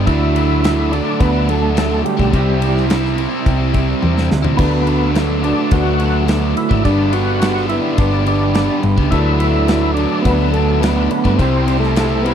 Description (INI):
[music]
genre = classic rock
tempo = 106 BPM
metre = 4/4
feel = straight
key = D mixolydian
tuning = A4 = 440 Hz
[part]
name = picked twelve-string acoustic guitar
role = accompaniment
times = 0.0-12.3 s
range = C3 to C5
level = -29 LUFS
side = right 4 dB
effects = none
[part]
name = biting overdriven guitar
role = riff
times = 0.0-12.3 s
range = G2 to E4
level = -23 LUFS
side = left 15 dB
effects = none
[part]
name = overdriven electric guitar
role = riff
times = 0.0-12.3 s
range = G2 to E4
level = -20 LUFS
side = right 12 dB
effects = none
[part]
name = hollow-body short-scale picked electric bass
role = bass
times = 0.0-12.3 s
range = G1 to G2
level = -18 LUFS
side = left 1 dB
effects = none
[part]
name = overdriven tonewheel organ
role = melody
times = 0.1-12.3 s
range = G3 to F#4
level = -20 LUFS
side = equal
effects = slow rotary speaker, chorus vibrato
[part]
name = big rock drum kit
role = drums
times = 0.1-12.3 s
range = crash cymbal, kick drum, ride cymbal, snare drum, toms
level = -22 LUFS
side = equal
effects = none
[part]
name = dark upright piano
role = accompaniment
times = 4.6-12.3 s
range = B3 to D5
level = -26 LUFS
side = left 6 dB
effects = none
[sound]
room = little or no reverb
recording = dry, close 1970s-style studio recording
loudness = -13 LUFS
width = side -8 dB against mid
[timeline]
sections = 0.0-12.3 A section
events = drum fill 4.0-4.6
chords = 0.1 D6; 2.3 C; 4.6 D6; 6.9 G; 9.1 D6; 11.4 C